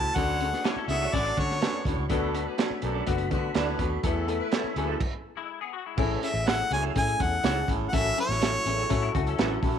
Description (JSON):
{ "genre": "uptempo 1960s-style soul", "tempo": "124 BPM", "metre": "4/4", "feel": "straight", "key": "A major", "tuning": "A4 = 441 Hz", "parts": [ { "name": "bright harmonica", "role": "melody", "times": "0.0-1.9, 6.2-9.1 s", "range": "C#5 to A5", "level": "-28 LUFS", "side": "left 1 dB", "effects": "none" }, { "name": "dark upright piano", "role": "accompaniment", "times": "0.0-9.8 s", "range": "A3 to B4", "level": "-32 LUFS", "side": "left 10 dB", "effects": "none" }, { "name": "tonewheel organ", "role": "sustained chords", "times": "0.0-9.8 s", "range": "F#3 to C#6", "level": "-39 LUFS", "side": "equal", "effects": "slow rotary speaker, overdrive, chorus vibrato" }, { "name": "raspy baritone saxophone", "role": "riff", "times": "0.0-9.8 s", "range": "D2 to B2", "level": "-37 LUFS", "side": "right 12 dB", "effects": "none" }, { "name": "vintage muted fingered electric bass", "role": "bass", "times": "0.0-9.8 s", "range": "F#1 to D3", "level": "-31 LUFS", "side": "equal", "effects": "none" }, { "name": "clear saxophone section", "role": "second line", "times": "0.2-5.0 s", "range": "D3 to C#5", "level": "-36 LUFS", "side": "left 1 dB", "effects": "none" }, { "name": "crunchy breakbeat drum kit", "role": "drums", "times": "0.2-9.7 s", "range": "crash cymbal, hi-hat, kick drum, snare drum", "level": "-30 LUFS", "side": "right 3 dB", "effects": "none" }, { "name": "semi-hollow electric guitar", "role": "riff", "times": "0.6-1.9, 5.4-6.1, 9.0-9.8 s", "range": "F#3 to B4", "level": "-36 LUFS", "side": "left 11 dB", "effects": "ensemble chorus" }, { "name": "semi-hollow electric guitar", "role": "stabs", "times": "0.6-9.5 s", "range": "A3 to E5", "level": "-37 LUFS", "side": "right 10 dB", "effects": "lush chorus" } ], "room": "light reverb, studio ambience", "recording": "1960s-style stereo with parts hard left and right", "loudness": "-24 LUFS", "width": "side -8 dB against mid", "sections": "0.0-6.0 A section; 6.0-9.8 B section", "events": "stop 5.0-6.0", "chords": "0.2 Dmaj7; 2.1 Bm7; 4.0 Esus4; 5.0 N.C.; 6.0 Amaj7; 7.9 F#m7/A", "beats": "| 0.16 0.64 1.13 1.61 | 2.10 2.58 3.07 3.55 | 4.04 4.53 5.01 5.50 | 5.98 6.47 6.96 7.44 | 7.93 8.41 8.90 9.39" }